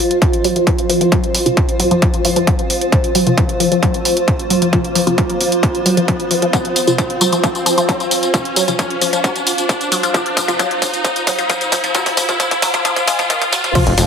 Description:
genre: driving peak-time techno.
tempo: 133 BPM.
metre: 4/4.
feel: straight.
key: unclear.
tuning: A4 = 443 Hz.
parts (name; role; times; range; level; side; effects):
riser and sub drop; sound effects; 1.7-14.1 s; none; -23 LUFS; equal; none.
granular cloud pad; texture; 0.0-14.1 s; F4 to F5; -19 LUFS; equal; built-in reverb, sidechain pumping.
techno drum kit; drums; 0.1-14.1 s; crash cymbal, hi-hat, ride cymbal, tambourine; -19 LUFS; equal; overdrive, sidechain pumping on hats, sidechain pumping on perc, sidechain pumping on cymbals.
electronic kick drum; drums; 0.2-13.8 s; none; -18 LUFS; equal; distortion, overdrive.
resonant blip pluck; riff; 0.4-14.0 s; Eb3 to Ab3; -19 LUFS; left 2 dB; phaser, sidechain pumping, ping-pong delay.
filtered dub chord stab; stabs; 1.1-13.8 s; C3 to F4; -21 LUFS; right 2 dB; phaser, sidechain pumping, digital delay.
gritty driven synth bass; bass; 13.9-14.1 s; F1; -15 LUFS; equal; sidechain pumping.
room: moderate digital room reverb, RT60 1.1 s, digital ambience.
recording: heavily compressed radio sound, high-pass filter.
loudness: -13 LUFS.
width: side -6 dB against mid.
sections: 0.0-13.8 A section.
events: build-up 0.0-13.8; filter sweep on synth arpeggio sound 0.0-13.8; filter sweep on synth stab 0.0-13.8; filter sweep 0.0-13.8; riser 1.7-13.8; drum fill 6.5-13.8; impact 13.8-14.1.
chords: 0.0 F5.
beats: 0.22 0.67 | 1.12 1.57 2.02 2.47 | 2.92 3.38 3.83 4.28 | 4.73 5.18 5.63 6.08 | 6.53 6.99 7.44 7.89 | 8.34 8.79 9.24 9.69 | 10.14 10.59 11.05 11.50 | 11.95 12.40 12.85 13.30 | 13.75.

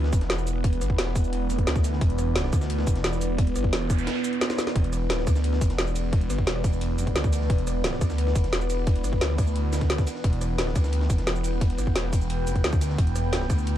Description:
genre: dark technical drum and bass.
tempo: 175 BPM.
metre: 4/4.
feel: straight.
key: E phrygian.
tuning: A4 = 440 Hz.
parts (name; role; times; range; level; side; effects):
deep dark ambient pad; sustained chords; 0.0-13.8 s; E3 to G5; -30 LUFS; equal; chorus, built-in reverb, sidechain pumping.
phased detuned saw bass; bass; 0.0-13.8 s; E1 to D2; -26 LUFS; equal; phaser, overdrive, sidechain pumping.
breakbeat sampler-style drum kit; drums; 0.0-13.8 s; ride cymbal, snare drum; -39 LUFS; equal; high-pass filter on cymbals, high-pass filter on snare.
drum and bass drum kit; drums; 0.1-13.7 s; hi-hat, ride cymbal, rim click, shaker, snare drum; -30 LUFS; equal; none.
electronic kick drum; drums; 0.1-13.6 s; none; -23 LUFS; equal; overdrive.
noise sweep; sound effects; 3.7-4.8 s; none; -37 LUFS; right 4 dB; none.
room: little or no reverb.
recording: dark, warm production.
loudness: -22 LUFS.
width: side -12 dB against mid.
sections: 0.0-13.8 A section.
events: noise sweep 3.7-4.8; drum fill 4.5.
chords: 0.0 E5.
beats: 0.30 | 0.64 0.98 1.33 1.67 | 2.01 2.36 2.70 3.04 | 3.38 3.73 4.07 4.41 | 4.76 5.10 5.44 5.79 | 6.13 6.47 6.81 7.16 | 7.50 7.84 8.19 8.53 | 8.87 9.21 9.56 9.90 | 10.24 10.59 10.93 11.27 | 11.61 11.96 12.30 12.64 | 12.98 13.33 13.67.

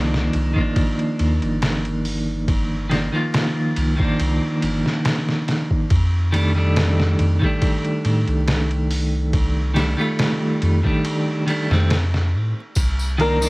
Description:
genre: trip hop.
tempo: 70 BPM.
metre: 4/4.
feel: swing 53% on 16ths.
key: C dorian.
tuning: A4 = 440 Hz.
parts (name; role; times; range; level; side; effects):
clean electric guitar; accompaniment; 0.0-13.5 s; Eb3 to F4; -21 LUFS; equal; tremolo, cassette tape, tape echo.
soft dub sub bass; bass; 0.0-13.5 s; G1 to A2; -20 LUFS; equal; none.
trip hop sampler-style drum kit; drums; 0.1-13.4 s; hi-hat, kick drum, ride cymbal, snare drum; -24 LUFS; equal; cassette tape.
tambourine; percussion; 12.8-13.5 s; none; -29 LUFS; left 2 dB; none.
santur; melody; 13.2-13.5 s; Bb4; -18 LUFS; left 1 dB; cassette tape.
room: little or no reverb.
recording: home recording on cassette, vinyl crackle.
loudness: -18 LUFS.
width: side -23 dB against mid.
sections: 0.0-13.5 A section.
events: none.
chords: 0.0 Cm11; 5.9 F13; 12.8 Cm11.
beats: 0.76 1.62 | 2.48 3.33 4.19 5.05 | 5.91 6.76 7.62 8.48 | 9.33 10.19 11.05 11.90 | 12.76.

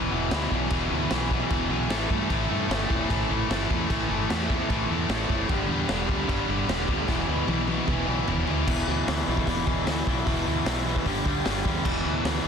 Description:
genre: punk rock.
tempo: 151 BPM.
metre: 4/4.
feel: straight.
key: E minor.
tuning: A4 = 439 Hz.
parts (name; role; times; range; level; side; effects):
biting overdriven guitar; riff; 0.0-12.5 s; E2 to A3; -30 LUFS; right 14 dB; none.
high-gain distorted guitar; riff; 0.0-8.7 s; E3 to E5; -32 LUFS; left 2 dB; distortion.
raw garage guitar; riff; 0.0-12.5 s; E2 to A3; -29 LUFS; left 16 dB; overdrive.
mellow fretless electric bass; bass; 0.0-12.5 s; E1 to G2; -31 LUFS; equal; none.
raw garage drum kit; drums; 0.3-12.3 s; crash cymbal, hi-hat, kick drum, snare drum, toms; -29 LUFS; equal; none.
room: little or no reverb.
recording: dense, heavily limited modern master.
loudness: -23 LUFS.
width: side -7 dB against mid.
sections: 0.0-8.7 A section; 8.7-12.5 B section.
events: drum fill 7.1-8.7.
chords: 0.0 Em; 1.9 A5; 2.3 Am; 5.5 Em; 8.7 E5; 11.1 G5; 11.9 E5.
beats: 0.33 | 0.72 1.12 1.52 1.92 | 2.31 2.71 3.11 3.51 | 3.90 4.30 4.70 5.10 | 5.50 5.89 6.29 6.69 | 7.09 7.48 7.88 8.28 | 8.68 9.07 9.47 9.87 | 10.26 10.66 11.06 11.45 | 11.85 12.25.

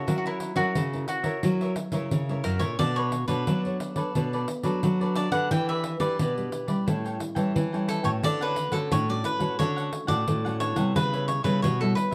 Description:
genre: samba and choro.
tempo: 88 BPM.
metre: 4/4.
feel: straight.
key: B minor.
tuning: A4 = 440 Hz.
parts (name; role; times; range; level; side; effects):
cavaquinho; melody; 0.0-12.1 s; E4 to G5; -32 LUFS; equal; none.
cavaquinho; accompaniment; 0.0-12.1 s; D4 to G5; -37 LUFS; equal; none.
nylon-string guitar; accompaniment; 0.0-12.1 s; A2 to C#5; -34 LUFS; equal; none.
nylon-string guitar; bass; 0.0-11.9 s; F#2 to F#3; -32 LUFS; equal; none.
pandeiro; percussion; 0.1-12.1 s; none; -33 LUFS; equal; none.
room: light reverb.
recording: dark, warm production.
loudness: -26 LUFS.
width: mono.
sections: 0.0-12.1 A section.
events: none.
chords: 0.1 F#7; 2.8 Bm9; 5.5 Em7; 6.9 A7; 8.2 Dmaj7; 11.0 C#m7b5.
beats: | 0.07 0.76 1.44 2.12 | 2.79 3.48 4.16 4.84 | 5.52 6.20 6.88 7.56 | 8.24 8.92 9.60 10.28 | 10.96 11.64.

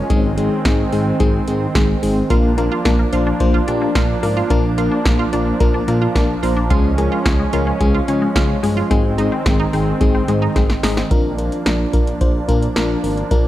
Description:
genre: synth-pop.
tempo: 109 BPM.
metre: 4/4.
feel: straight.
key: Bb mixolydian.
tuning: A4 = 440 Hz.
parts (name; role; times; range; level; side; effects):
FM electric piano with tremolo; accompaniment; 0.0-13.5 s; Ab3 to Bb5; -20 LUFS; left 4 dB; none.
warm analog pad; sustained chords; 0.0-13.5 s; Eb3 to D4; -22 LUFS; right 2 dB; wide subtle chorus.
smooth synth bass; bass; 0.1-13.5 s; G1 to Db3; -22 LUFS; equal; none.
electro analog drum machine; drums; 0.1-13.4 s; hi-hat, kick drum, snare drum; -18 LUFS; equal; none.
resonant blip pluck; arpeggios; 2.3-11.1 s; Ab3 to F4; -24 LUFS; right 2 dB; chorus, slapback echo.
room: light reverb, digital ambience.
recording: none.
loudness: -14 LUFS.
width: side -14 dB against mid.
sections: 0.0-11.1 A section; 11.1-13.5 B section.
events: FM electric piano fill 5.9-6.7; drum fill 10.6-11.1.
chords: 0.1 Ab; 2.3 Bb; 6.7 Db; 8.9 Ab; 11.1 Bb.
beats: | 0.10 0.65 1.20 1.75 | 2.30 2.85 3.40 3.95 | 4.50 5.05 5.61 6.16 | 6.71 7.26 7.81 8.36 | 8.91 9.46 10.01 10.56 | 11.11 11.66 12.21 12.76 | 13.31.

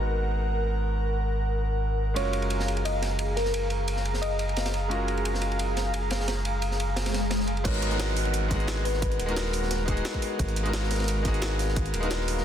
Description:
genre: liquid drum and bass.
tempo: 175 BPM.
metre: 4/4.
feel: swing 53% on 16ths.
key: G# dorian.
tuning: A4 = 440 Hz.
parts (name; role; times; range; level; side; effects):
bright concert grand piano; accompaniment; 0.0-12.4 s; G#3 to A#4; -32 LUFS; left 1 dB; ping-pong delay.
airy breathy pad; sustained chords; 0.0-12.4 s; G#4 to A#5; -33 LUFS; equal; chorus, sidechain pumping.
smooth synth bass; bass; 0.0-12.4 s; D#1 to G#1; -28 LUFS; equal; tube saturation.
thumb-piano-like synth pluck; melody; 2.2-4.7, 7.7-9.3 s; A#4 to D#5; -33 LUFS; left 1 dB; wide subtle chorus, digital delay.
crunchy breakbeat drum kit; drums; 2.2-12.4 s; ride cymbal, snare drum; -35 LUFS; equal; high-pass filter on cymbals, high-pass filter on snare, high-pass filter on room.
swell and downlifter; sound effects; 7.0-10.4 s; none; -33 LUFS; left 2 dB; none.
electronic kick drum; drums; 7.7-11.8 s; none; -29 LUFS; equal; overdrive.
jungle sampler-style drum kit; drums; 7.7-12.4 s; crash cymbal, hi-hat, snare drum; -34 LUFS; right 1 dB; none.
room: light reverb, studio ambience.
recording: dense, heavily limited modern master.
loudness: -25 LUFS.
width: side -9 dB against mid.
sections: 0.0-7.7 A section; 7.7-12.4 B section.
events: swell 7.0-7.7; drop 7.7-12.4.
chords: 0.0 G#m9; 2.2 F#maj9; 7.7 G#m9.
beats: 0.11 0.45 | 0.79 1.14 1.48 1.82 | 2.17 2.51 2.85 3.19 | 3.54 3.88 4.22 4.57 | 4.91 5.25 5.59 5.94 | 6.28 6.62 6.96 7.31 | 7.65 7.99 8.34 8.68 | 9.02 9.37 9.71 10.05 | 10.39 10.74 11.08 11.42 | 11.77 12.11.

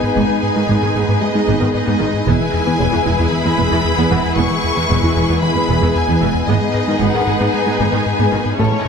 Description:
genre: cinematic.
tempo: 114 BPM.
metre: 4/4.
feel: straight.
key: G# phrygian.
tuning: A4 = 440 Hz.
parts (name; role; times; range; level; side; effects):
warm symphonic violin section; melody; 0.0-8.9 s; C#5 to C#6; -22 LUFS; left 3 dB; none.
rich symphonic violin section; second line; 0.0-8.9 s; E4 to C#5; -22 LUFS; left 3 dB; none.
rich symphonic viola section; accompaniment; 0.0-8.9 s; D#3 to E4; -23 LUFS; right 3 dB; none.
lush unison pad; sustained chords; 0.0-8.9 s; E3 to A4; -23 LUFS; right 1 dB; chorus.
round analog bass; riff; 0.0-8.9 s; E2 to A3; -21 LUFS; left 2 dB; none.
felt-muted upright piano; texture; 0.0-8.9 s; G#3 to B5; -29 LUFS; left 1 dB; none.
thumb-piano-like synth pluck; arpeggios; 0.2-8.7 s; E3 to G#4; -24 LUFS; left 2 dB; chorus, ping-pong delay.
rich symphonic cello section; bass; 0.2-8.7 s; E2 to A2; -23 LUFS; right 3 dB; none.
rich symphonic double bass section; bass; 0.2-8.6 s; E1 to A1; -23 LUFS; right 4 dB; none.
reverse cymbal; sound effects; 8.6-8.9 s; none; barely audible; none; none.
room: wet scoring stage reverb, RT60 1.7 s.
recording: none.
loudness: -13 LUFS.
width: side -6 dB against mid.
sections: 0.0-8.9 A section.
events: none.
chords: 0.0 G#m; 2.3 E; 6.5 G#m.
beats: | 0.17 0.69 1.22 1.75 | 2.27 2.80 3.33 3.85 | 4.38 4.91 5.43 5.96 | 6.48 7.01 7.54 8.06 | 8.59.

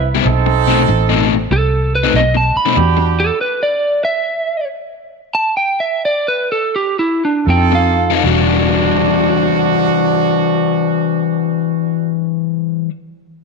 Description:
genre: electric blues shuffle.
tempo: 76-96 BPM.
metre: 4/4.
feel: swing 67% on 8ths.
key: E minor.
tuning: A4 = 440 Hz.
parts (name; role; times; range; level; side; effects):
lightly driven lead guitar; melody; 0.0-8.2 s; C4 to B5; -16 LUFS; right 2 dB; none.
brilliant horn section; stabs; 0.0-3.3, 7.4-12.1 s; C4 to B4; -18 LUFS; right 9 dB; none.
vintage muted fingered electric bass; bass; 0.0-3.3, 7.5-12.8 s; E1 to F2; -16 LUFS; right 2 dB; none.
overdriven semi-hollow guitar; riff; 0.1-3.0, 7.7-12.9 s; B2 to A4; -16 LUFS; left 15 dB; none.
room: moderate echo chamber reverb, RT60 2.0 s.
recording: 1960s-style stereo with parts hard left and right.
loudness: -13 LUFS.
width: side -4 dB against mid.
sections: 0.0-8.2 A section; 8.2-11.4 B section.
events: lead electric guitar solo 0.0-8.2; slowing down 2.8-8.2; stop 2.8-7.5.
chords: 0.2 B7b9; 2.8 Em9; 7.5 F7; 8.2 Em9.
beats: | 0.25 0.88 1.50 2.13 | 2.76 3.39 4.03 4.68 | 5.34 6.03 6.73 7.47 | 8.24 9.03 9.81 10.60.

